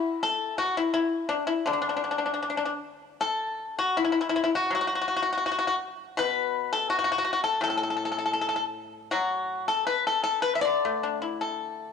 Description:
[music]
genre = chinese traditional, Chinese solo plucked strings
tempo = 77-85 BPM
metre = 2/4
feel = rubato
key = D gong mode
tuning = A4 = 440 Hz
[part]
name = pipa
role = solo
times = 0.0-11.9 s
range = A2 to E5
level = -25 LUFS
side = left 4 dB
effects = cassette tape
[sound]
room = light reverb, small room ambience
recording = home recording on cassette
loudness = -25 LUFS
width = side -6 dB against mid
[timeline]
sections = 0.0-3.2 A section; 3.2-11.9 B section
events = none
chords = none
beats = | 0.23 0.94 | 1.67 2.44 | 3.21 3.98 | 4.73 5.47 | 6.19 6.90 | 7.62 8.37 | 9.13 9.88 | 10.64 11.38

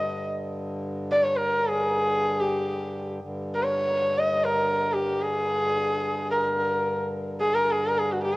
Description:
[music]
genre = indian classical, Hindustani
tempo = free time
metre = none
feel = none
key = G raga todi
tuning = A4 = 440 Hz
[part]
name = warm sarangi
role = melody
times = 0.0-8.4 s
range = F#4 to Eb5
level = -23 LUFS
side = equal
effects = cassette tape
[part]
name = hand-pumped harmonium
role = drone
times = 0.0-8.4 s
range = G2 to D3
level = -32 LUFS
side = equal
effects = cassette tape
[sound]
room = light reverb, studio ambience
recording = home recording on cassette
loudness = -23 LUFS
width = side -20 dB against mid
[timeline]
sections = 0.0-3.2 A section; 3.2-8.4 A section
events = none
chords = none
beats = free time

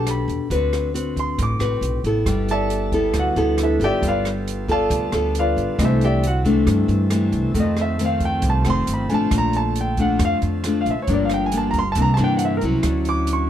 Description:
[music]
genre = bossa nova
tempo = 136 BPM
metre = 4/4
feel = straight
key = unclear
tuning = A4 = 436 Hz
[part]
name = warm concert grand piano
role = melody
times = 0.0-13.5 s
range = E4 to D6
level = -23 LUFS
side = right 1 dB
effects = none
[part]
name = nylon-string guitar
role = accompaniment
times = 0.0-13.5 s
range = F2 to B4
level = -22 LUFS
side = left 2 dB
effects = none
[part]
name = upright bass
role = bass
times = 0.0-13.5 s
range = F1 to G2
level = -23 LUFS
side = right 1 dB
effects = none
[part]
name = open jazz drum kit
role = drums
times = 0.1-13.4 s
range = hi-hat, kick drum, rim click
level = -28 LUFS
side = right 1 dB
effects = none
[part]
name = chamber organ, sparkling flutes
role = sustained chords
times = 2.3-13.5 s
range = D3 to Bb4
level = -31 LUFS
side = right 1 dB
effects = none
[sound]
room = light reverb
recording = none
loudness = -18 LUFS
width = side -10 dB against mid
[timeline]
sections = 0.0-13.5 A section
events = grand piano solo 0.0-13.5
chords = 0.5 D13; 2.3 G69; 4.0 G9; 5.8 C69; 7.6 F7; 9.3 Bbmaj7; 11.1 Gm7; 12.0 C9; 12.8 Dmaj9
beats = 0.06 | 0.50 0.94 1.38 1.82 | 2.26 2.70 3.14 3.58 | 4.03 4.46 4.91 5.35 | 5.79 6.23 6.67 7.11 | 7.55 7.99 8.43 8.87 | 9.31 9.75 10.20 10.64 | 11.08 11.52 11.96 12.40 | 12.84 13.28

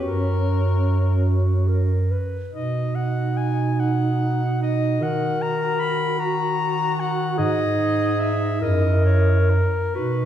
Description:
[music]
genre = classical, lyrical piece for single-reed quartet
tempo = 43-51 BPM (dotted quarters)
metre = 6/8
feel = rubato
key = unclear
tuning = A4 = 439 Hz
[part]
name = warm soprano saxophone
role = melody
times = 0.0-10.3 s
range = A#4 to B5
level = -26 LUFS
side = left 4 dB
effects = none
[part]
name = mellow alto saxophone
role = second line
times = 0.0-10.3 s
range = C#4 to F#4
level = -28 LUFS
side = right 4 dB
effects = none
[part]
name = warm clarinet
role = accompaniment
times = 0.0-10.3 s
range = D#4 to B4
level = -27 LUFS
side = left 2 dB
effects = none
[part]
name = warm bass clarinet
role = bass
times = 0.0-10.3 s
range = F#2 to D#3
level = -21 LUFS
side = right 1 dB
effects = none
[sound]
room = wet scoring stage reverb, RT60 1.8 s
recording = heard from further back in the room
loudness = -19 LUFS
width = side -10 dB against mid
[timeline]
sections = 0.0-10.3 A section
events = none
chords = 0.0 F#; 2.5 B; 5.0 D#m; 7.4 G#5; 8.6 F#7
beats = | 0.01 1.27 | 2.53 3.79 | 5.01 6.20 | 7.38 8.62 | 9.95

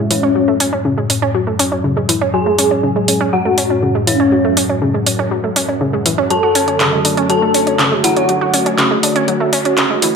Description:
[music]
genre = melodic techno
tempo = 121 BPM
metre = 4/4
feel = straight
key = F# minor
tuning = A4 = 440 Hz
[part]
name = sweeping resonant pad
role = sustained chords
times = 0.0-10.2 s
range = A2 to F#4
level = -21 LUFS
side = equal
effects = chorus
[part]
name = analog pluck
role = arpeggios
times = 0.0-10.1 s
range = C#3 to F#4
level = -17 LUFS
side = equal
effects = chorus, ping-pong delay
[part]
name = analog drone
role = drone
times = 0.0-10.2 s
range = F#2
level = -24 LUFS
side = left 1 dB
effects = chorus
[part]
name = mellow synth brass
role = melody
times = 0.1-8.7 s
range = C#4 to A4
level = -18 LUFS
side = left 1 dB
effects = chorus, ping-pong delay
[part]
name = dark detuned synth bell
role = second line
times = 0.1-8.7 s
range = C#5 to A5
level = -22 LUFS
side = equal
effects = chorus, low-pass filter, ping-pong delay
[part]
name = techno drum kit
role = drums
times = 0.1-10.1 s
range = handclaps, hi-hat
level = -16 LUFS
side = right 1 dB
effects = overdrive, high-pass filter on hats, high-pass filter on snare
[sound]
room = wet digital room reverb, RT60 1.1 s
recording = high-pass filter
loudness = -12 LUFS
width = side -5 dB against mid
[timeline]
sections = 0.0-10.2 A section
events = build-up 0.0-10.2; filter sweep on analog polysynth 0.0-10.2; filter sweep on synth bell 0.0-10.2; filter sweep on analog synth pad 0.0-10.2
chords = 0.0 F#madd9; 6.3 D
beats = | 0.35 0.85 1.35 1.84 | 2.34 2.83 3.33 3.83 | 4.32 4.82 5.31 5.81 | 6.30 6.80 7.30 7.79 | 8.29 8.78 9.28 9.78

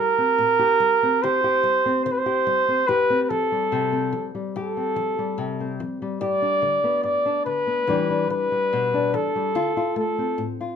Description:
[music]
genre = acoustic folk duo or small band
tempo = 72 BPM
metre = 4/4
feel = straight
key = unclear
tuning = A4 = 436 Hz
[part]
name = warm flugelhorn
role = melody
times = 0.0-10.5 s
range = A4 to D5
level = -21 LUFS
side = right 1 dB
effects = none
[part]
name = nylon-string guitar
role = accompaniment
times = 0.0-10.8 s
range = E2 to G4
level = -26 LUFS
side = left 4 dB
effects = none
[sound]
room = light reverb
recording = minimal, uncompressed stereo recording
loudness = -20 LUFS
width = side -7 dB against mid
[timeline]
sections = 0.0-10.8 A section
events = none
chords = 0.0 Eb6; 1.2 Cm/Eb; 2.9 Fadd9; 6.2 G; 7.9 Em7; 9.5 Dm7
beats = 0.37 1.21 2.04 | 2.87 3.71 4.54 5.37 | 6.21 7.04 7.88 8.71 | 9.55 10.38

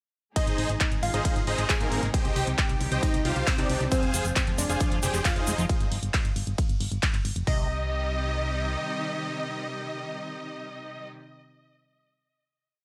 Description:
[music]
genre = uplifting trance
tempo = 135 BPM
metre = 4/4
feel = straight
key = C minor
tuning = A4 = 439 Hz
[part]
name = supersaw chords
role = melody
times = 0.4-11.1 s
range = Bb3 to Ab5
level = -34 LUFS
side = equal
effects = vintage 12-bit sampler grit, sidechain pumping, delay
[part]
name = glassy wavetable pluck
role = second line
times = 0.4-11.1 s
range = C4 to Ab5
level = -36 LUFS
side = equal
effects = chorus, dub echo
[part]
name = rich symphonic string section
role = sustained chords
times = 0.4-11.1 s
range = C3 to Ab4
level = -39 LUFS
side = equal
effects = sidechain pumping
[part]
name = big-room dance drum kit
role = drums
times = 0.4-7.6 s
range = hi-hat, kick drum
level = -29 LUFS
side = equal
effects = none
[part]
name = big-room dance drum kit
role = drums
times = 0.4-7.5 s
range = handclaps, hi-hat, ride cymbal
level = -34 LUFS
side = equal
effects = none
[part]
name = solid FM bass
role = bass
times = 0.5-8.8 s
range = F1 to C2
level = -33 LUFS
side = equal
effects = sidechain pumping
[part]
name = liquid acid bass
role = arpeggios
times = 3.9-7.7 s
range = F2 to Ab3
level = -38 LUFS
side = equal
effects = none
[part]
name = egg shaker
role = percussion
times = 3.9-5.7 s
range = none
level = -36 LUFS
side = equal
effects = none
[sound]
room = light reverb, digital ambience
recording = none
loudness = -27 LUFS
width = mono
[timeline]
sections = 0.4-7.5 drop; 7.5-11.0 final chord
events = drop 0.4-7.5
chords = 0.4 Ab; 2.1 Cm; 3.9 Fm; 5.7 N.C.; 7.5 Cm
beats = | 0.36 0.81 1.25 1.69 | 2.14 2.58 3.03 3.47 | 3.92 4.36 4.80 5.25 | 5.69 6.14 6.58 7.03 | 7.47 7.92 8.36 8.80 | 9.25 9.69 10.14 10.58

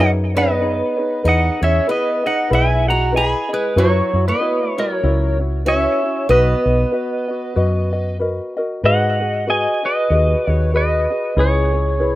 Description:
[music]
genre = Hawaiian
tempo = 95 BPM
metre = 4/4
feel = swing 58% on 8ths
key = B major, G# minor from 8.8 s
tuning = A4 = 440 Hz
[part]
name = pedal steel guitar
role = melody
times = 0.0-12.2 s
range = F#4 to B5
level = -19 LUFS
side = equal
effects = tape echo
[part]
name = picked steel-string acoustic guitar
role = second line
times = 0.0-8.2 s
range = F#3 to G#4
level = -23 LUFS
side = right 3 dB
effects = none
[part]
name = ukulele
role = accompaniment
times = 0.0-12.2 s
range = D#4 to D#5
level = -22 LUFS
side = left 1 dB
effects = none
[part]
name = woody fretless electric bass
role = bass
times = 0.0-12.2 s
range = B1 to G#2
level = -18 LUFS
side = equal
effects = none
[sound]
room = light reverb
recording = rough home demo mix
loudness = -15 LUFS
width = side -16 dB against mid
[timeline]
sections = 0.0-8.8 A section; 8.8-12.2 B section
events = none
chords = 0.0 B69; 3.8 F#7sus4; 6.3 Bmaj7; 8.8 G#m7; 11.4 C#m7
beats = 0.62 | 1.25 1.88 2.51 3.14 | 3.78 4.41 5.04 5.67 | 6.31 6.94 7.57 8.21 | 8.84 9.47 10.10 10.74 | 11.37 12.00

